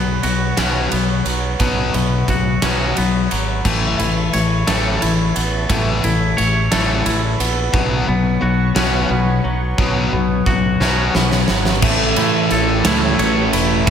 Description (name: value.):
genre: post-rock.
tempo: 59 BPM (dotted quarters).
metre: 6/8.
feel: straight.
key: A major.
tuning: A4 = 441 Hz.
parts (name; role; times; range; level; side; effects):
chorused pulse-width pad; sustained chords; 0.0-13.9 s; B4 to C#6; -30 LUFS; right 4 dB; none.
twangy electric guitar; arpeggios; 0.0-13.9 s; B2 to C#5; -22 LUFS; equal; slapback echo.
distorted electric guitar; riff; 0.0-13.9 s; A2 to B3; -20 LUFS; left 5 dB; overdrive.
modern bright fingered electric bass; bass; 0.0-13.9 s; E1 to A2; -22 LUFS; right 1 dB; none.
big rock drum kit; drums; 0.2-13.9 s; crash cymbal, kick drum, ride cymbal, snare drum; -20 LUFS; right 2 dB; none.
sludgy distorted guitar; riff; 11.8-13.9 s; A2 to A3; -19 LUFS; right 10 dB; overdrive, slapback echo.
room: moderate lush hall reverb, RT60 1.6 s, studio reverb.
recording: big arena sound.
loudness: -14 LUFS.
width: side -8 dB against mid.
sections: 0.0-11.8 A section; 11.8-13.9 B section.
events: build-up 0.0-11.8; drum fill 10.8-11.8.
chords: 0.0 Bsus2; 3.7 Aadd9; 7.7 Bsus2; 11.8 Aadd9.